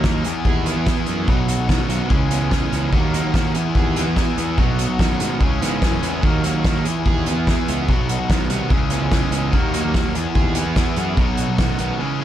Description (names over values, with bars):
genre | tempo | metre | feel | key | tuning
indie rock | 145 BPM | 4/4 | straight | E lydian | A4 = 439 Hz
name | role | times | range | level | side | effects
crunchy overdriven guitar | riff | 0.0-12.2 s | E3 to G#4 | -24 LUFS | left 7 dB | none
crunchy overdriven guitar | riff | 0.0-12.2 s | E2 to G#4 | -23 LUFS | right 7 dB | wide subtle chorus
fuzz picked electric bass | bass | 0.0-11.9 s | B1 to G#2 | -24 LUFS | equal | overdrive
loose indie drum kit | drums | 0.0-11.9 s | hi-hat, kick drum, snare drum | -20 LUFS | equal | none
room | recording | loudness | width
light reverb, small room ambience | dark, warm production | -17 LUFS | side -11 dB against mid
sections
0.0-12.2 A section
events
none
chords
0.2 Emaj7; 1.3 B; 2.1 C#m7; 2.9 D#m; 3.6 Emaj7; 4.6 B; 5.4 C#m7; 6.2 D#m; 6.9 Emaj7; 7.9 B; 8.7 C#m7; 9.5 D#m; 10.2 Emaj7; 11.2 B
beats
0.04 0.45 0.86 | 1.28 1.69 2.10 2.52 | 2.93 3.34 3.76 4.17 | 4.58 5.00 5.41 5.82 | 6.24 6.65 7.06 7.47 | 7.89 8.30 8.71 9.12 | 9.54 9.95 10.36 10.77 | 11.19 11.60 12.01